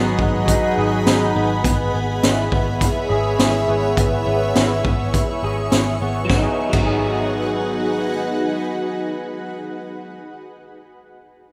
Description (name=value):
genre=dream pop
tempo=103 BPM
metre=4/4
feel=straight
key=G# minor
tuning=A4 = 440 Hz
part: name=semi-hollow electric guitar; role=accompaniment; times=0.0-2.2 s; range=F#3 to G#4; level=-28 LUFS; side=equal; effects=tremolo, lush chorus
part: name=granular cloud pad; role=sustained chords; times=0.0-9.4 s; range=D#4 to C#6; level=-26 LUFS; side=equal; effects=built-in reverb
part: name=electric guitar at the edge of break-up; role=arpeggios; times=0.0-10.4 s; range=F#3 to G#4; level=-26 LUFS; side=equal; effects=analog chorus, digital delay
part: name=vintage muted picked electric bass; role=bass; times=0.0-10.1 s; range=G#1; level=-26 LUFS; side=equal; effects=none
part: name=raw garage drum kit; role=drums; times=0.2-6.9 s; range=crash cymbal, hi-hat, kick drum, snare drum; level=-22 LUFS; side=equal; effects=none
room=wet lush hall reverb, RT60 1.9 s, studio ambience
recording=rough home demo mix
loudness=-19 LUFS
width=mono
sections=0.0-6.3 A section; 6.3-8.6 B section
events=none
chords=0.0 G#m7; 1.6 C#m7/G#; 6.3 G#m7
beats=0.47 1.06 | 1.64 2.22 2.81 3.39 | 3.97 4.55 5.13 5.72 | 6.30 6.88 7.46 8.05